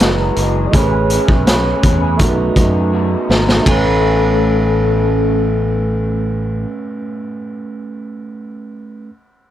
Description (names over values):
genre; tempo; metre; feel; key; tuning
indie pop, bedroom pop; 82 BPM; 4/4; straight; A lydian; A4 = 435 Hz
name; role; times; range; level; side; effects
soft octave-layered synth lead; melody; 0.0-6.6 s; A4 to D#5; -21 LUFS; left 5 dB; tremolo, wide subtle chorus, tape echo
barky tine electric piano; accompaniment; 0.0-9.1 s; G#3 to G#5; -21 LUFS; right 4 dB; overdrive, cassette tape
electric guitar through a small old amp; accompaniment; 0.0-7.2 s; B2 to B4; -22 LUFS; left 1 dB; lush chorus, warbly pitch drift
ethereal airy pad; sustained chords; 0.0-6.6 s; A2 to D#5; -26 LUFS; right 1 dB; none
fingered electric bass; bass; 0.0-6.6 s; F#1 to F#2; -18 LUFS; equal; none
raw garage drum kit; drums; 0.0-3.8 s; hi-hat, kick drum, ride cymbal, snare drum; -16 LUFS; equal; none
room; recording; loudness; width
light reverb; dry, gritty hardware recording; -12 LUFS; side -12 dB against mid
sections
0.0-3.7 A section; 3.7-6.6 B section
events
drum fill 2.9-3.7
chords
0.0 Emaj9; 0.7 Amaj9; 2.2 B7; 3.7 Amaj9